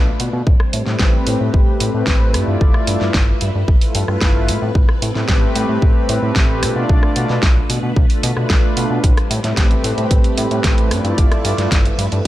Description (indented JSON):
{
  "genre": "nu-disco, nu disco",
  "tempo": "112 BPM",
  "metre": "4/4",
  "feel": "straight",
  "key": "A minor",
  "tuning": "A4 = 439 Hz",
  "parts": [
    { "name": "string machine, full ensemble", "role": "sustained chords", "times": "0.0-12.3 s", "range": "F3 to E5", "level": "-27 LUFS", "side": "equal", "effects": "phaser, ensemble chorus, sidechain pumping" },
    { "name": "fat analog bass", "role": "bass", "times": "0.0-12.2 s", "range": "G1 to B2", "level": "-20 LUFS", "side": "equal", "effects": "tube saturation, sidechain pumping" },
    { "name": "pop drum kit", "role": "drums", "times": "0.2-12.2 s", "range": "hi-hat, rim click, snare drum", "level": "-22 LUFS", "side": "equal", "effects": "none" },
    { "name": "electronic kick drum", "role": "drums", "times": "0.5-11.8 s", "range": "none", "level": "-14 LUFS", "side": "equal", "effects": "none" },
    { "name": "warm analog pad", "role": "accompaniment", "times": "0.9-11.7 s", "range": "A3 to D5", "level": "-21 LUFS", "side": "equal", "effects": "chorus, sidechain pumping, slapback echo" }
  ],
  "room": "little or no reverb",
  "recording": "none",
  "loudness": "-13 LUFS",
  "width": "side -15 dB against mid",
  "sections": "0.0-12.3 A section",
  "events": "none",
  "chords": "0.5 Am9; 2.3 G13; 4.5 Am9; 6.6 Bm7b5; 9.0 Am9; 10.9 G13"
}